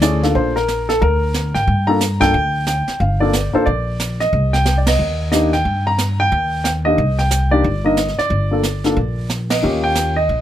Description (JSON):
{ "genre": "jazz piano trio", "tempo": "181 BPM", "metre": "4/4", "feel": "swing 63% on 8ths", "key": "G minor", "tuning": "A4 = 440 Hz", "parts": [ { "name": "warm upright piano", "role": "melody", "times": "0.0-10.4 s", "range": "A3 to Bb5", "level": "-17 LUFS", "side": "left 1 dB", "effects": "none" }, { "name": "upright bass", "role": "bass", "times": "0.0-10.4 s", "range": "G1 to G2", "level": "-19 LUFS", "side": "equal", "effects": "none" }, { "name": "jazz brush drum kit", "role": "drums", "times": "0.0-10.4 s", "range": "brushed snare drum, hi-hat, kick drum, ride cymbal, snare drum", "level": "-23 LUFS", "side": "right 2 dB", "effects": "none" } ], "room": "little or no reverb", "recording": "close, detailed microphones", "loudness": "-15 LUFS", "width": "side -11 dB against mid", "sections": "0.0-10.4 A section", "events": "band accent 4.8, 9.5", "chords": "0.0 Gm7; 4.3 Cm7; 8.3 Gm; 9.6 Eb7" }